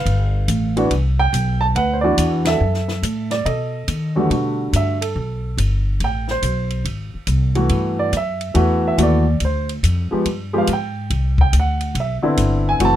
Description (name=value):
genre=jazz piano trio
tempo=141 BPM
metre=4/4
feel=swing 66% on 8ths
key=unclear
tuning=A4 = 441 Hz
part: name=warm upright piano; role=melody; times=0.0-13.0 s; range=E2 to A5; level=-20 LUFS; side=right 1 dB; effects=none
part: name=upright bass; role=bass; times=0.0-13.0 s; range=F#1 to D#3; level=-19 LUFS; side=equal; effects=none
part: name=compact cocktail drum kit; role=drums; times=0.1-12.9 s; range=hi-hat, kick drum, ride cymbal, snare drum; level=-24 LUFS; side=left 1 dB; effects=none
room=little or no reverb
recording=minimal, uncompressed stereo recording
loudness=-17 LUFS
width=side -12 dB against mid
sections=0.0-4.3 A section; 4.3-13.0 B section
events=band accent 2.4; upright piano solo 4.3-13.0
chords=0.1 G9; 0.9 Cmaj9#11; 2.6 F#m7; 3.5 B7; 4.3 Gmaj9; 6.0 Amadd9; 6.9 G#; 7.7 Gmaj13; 9.4 Dm; 10.3 G7(no3); 11.1 Cmaj9